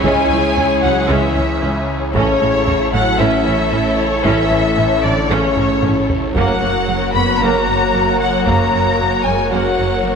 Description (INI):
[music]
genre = cinematic, hybrid orchestral and electronic film score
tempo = 114 BPM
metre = 4/4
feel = straight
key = unclear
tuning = A4 = 438 Hz
[part]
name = warm symphonic violin section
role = melody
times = 0.0-10.2 s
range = C#5 to B5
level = -19 LUFS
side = left 3 dB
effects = none
[part]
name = warm symphonic violin section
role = second line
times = 0.0-10.2 s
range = G#4 to C#5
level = -21 LUFS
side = left 1 dB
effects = none
[part]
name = rich symphonic viola section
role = accompaniment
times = 0.0-10.2 s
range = A#3 to F#4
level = -22 LUFS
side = right 2 dB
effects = none
[part]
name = airy breathy pad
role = sustained chords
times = 0.0-10.2 s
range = F#3 to C#5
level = -23 LUFS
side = right 1 dB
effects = chorus
[part]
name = mellow French horn section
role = sustained chords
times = 0.0-10.2 s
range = C#3 to B3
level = -23 LUFS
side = left 4 dB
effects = none
[part]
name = mellow trombone section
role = sustained chords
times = 0.0-9.7 s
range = C#3 to A#3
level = -26 LUFS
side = right 4 dB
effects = none
[part]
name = phased detuned saw bass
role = bass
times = 0.0-10.2 s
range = F#1 to C#2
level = -24 LUFS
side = equal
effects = phaser
[part]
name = rich symphonic cello section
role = bass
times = 0.0-10.1 s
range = C#2 to A2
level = -25 LUFS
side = right 4 dB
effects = none
[part]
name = rich symphonic double bass section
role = bass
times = 0.0-10.1 s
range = F#1 to C#2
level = -25 LUFS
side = right 4 dB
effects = none
[part]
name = taiko ensemble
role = drums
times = 0.0-9.0 s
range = none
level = -25 LUFS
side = equal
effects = none
[sound]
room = wet scoring stage reverb, RT60 1.6 s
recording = none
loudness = -13 LUFS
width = side -6 dB against mid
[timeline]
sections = 0.0-10.2 A section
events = drum fill 5.6-6.4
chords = 0.0 C#m; 2.1 A; 6.4 F#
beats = | 0.04 0.56 1.09 1.62 | 2.14 2.67 3.20 3.72 | 4.25 4.78 5.30 5.83 | 6.36 6.88 7.41 7.93 | 8.46 8.99 9.51 10.04